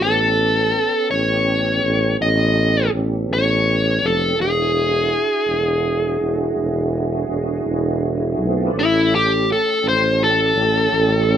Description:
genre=slow blues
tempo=55 BPM (dotted quarters)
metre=12/8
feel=straight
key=unclear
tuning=A4 = 440 Hz
part: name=dark smooth lead guitar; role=melody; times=0.0-11.4 s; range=E4 to D#5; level=-18 LUFS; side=left 1 dB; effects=overdrive
part: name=tonewheel organ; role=sustained chords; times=0.0-11.4 s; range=A3 to D5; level=-25 LUFS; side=right 3 dB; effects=slow rotary speaker, overdrive, chorus vibrato
part: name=mellow tuba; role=bass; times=0.0-11.4 s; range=E1 to B1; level=-20 LUFS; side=right 1 dB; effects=none
room=light reverb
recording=band playing live in one room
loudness=-16 LUFS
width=side -9 dB against mid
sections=0.0-8.8 A section; 8.8-11.4 B section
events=lead electric guitar solo 8.8-11.4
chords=0.0 A9; 4.4 E9; 8.8 A7

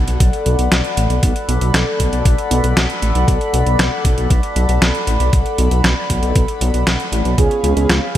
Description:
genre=synthwave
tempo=117 BPM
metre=4/4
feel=straight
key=B minor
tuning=A4 = 440 Hz
part: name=chorused pulse-width pad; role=sustained chords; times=0.0-8.2 s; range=G#4 to B5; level=-21 LUFS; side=left 2 dB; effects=sidechain pumping
part: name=wide detuned saw bass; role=bass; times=0.0-8.2 s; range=A1 to C#2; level=-16 LUFS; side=equal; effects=chorus, sidechain pumping
part: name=detuned 8-bit digital drum machine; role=drums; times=0.1-8.2 s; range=hi-hat, snare drum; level=-20 LUFS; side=equal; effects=none
part: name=electronic kick drum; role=drums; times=0.2-8.2 s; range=none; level=-16 LUFS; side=equal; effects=none
part: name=expressive portamento lead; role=melody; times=7.4-8.2 s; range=G#4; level=-20 LUFS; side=right 3 dB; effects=lush chorus, cassette tape, tape echo
part: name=mellow FM electric piano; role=stabs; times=7.4-8.2 s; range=B3 to G#4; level=-22 LUFS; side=right 3 dB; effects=chorus, tremolo
room=light reverb, digital ambience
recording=none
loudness=-13 LUFS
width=side -12 dB against mid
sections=0.0-8.2 A section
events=none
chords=0.0 Bm7; 7.4 C#7

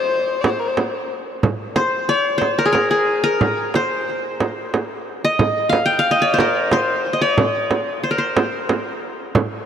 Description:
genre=Arabic maqam ensemble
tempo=91 BPM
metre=3/4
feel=straight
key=C maqam bayati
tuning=A4 = 440 Hz
part: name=qanun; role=melody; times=0.0-9.5 s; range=Ab4 to G5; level=-18 LUFS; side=left 1 dB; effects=diffuse ambient delay
part: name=warm violin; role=second line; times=0.0-0.8 s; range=Bb4 to D5-48c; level=-23 LUFS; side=left 4 dB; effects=none
part: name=frame drum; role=percussion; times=0.4-9.5 s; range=none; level=-22 LUFS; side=right 3 dB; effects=none
room=wet huge ambient reverb, RT60 4.0 s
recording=dreamy mix soaked in reverb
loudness=-16 LUFS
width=side -8 dB against mid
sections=0.0-1.4 A section; 1.4-9.7 B section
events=none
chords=none

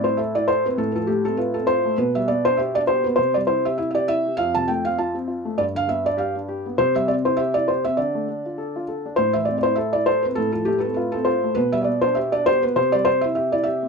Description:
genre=celtic folk, Celtic reel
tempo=200 BPM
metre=4/4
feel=swing 57% on 8ths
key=unclear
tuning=A4 = 439 Hz
part: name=felt-muted upright piano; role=melody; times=0.0-13.9 s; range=G4 to A5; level=-20 LUFS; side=right 1 dB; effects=none
part: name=warm upright piano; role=accompaniment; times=0.0-13.9 s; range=F2 to A4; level=-25 LUFS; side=left 2 dB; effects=none
room=moderate small room ambience, RT60 0.5 s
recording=minimal, uncompressed stereo recording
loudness=-19 LUFS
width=side -4 dB against mid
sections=0.0-9.2 A section; 9.2-13.9 A section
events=none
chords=0.0 Am; 0.8 F/A; 2.0 G/B; 3.2 C; 4.4 F; 5.6 G; 6.8 C; 8.0 Dm; 9.2 Am; 10.4 F/A; 11.6 G/B; 12.8 C

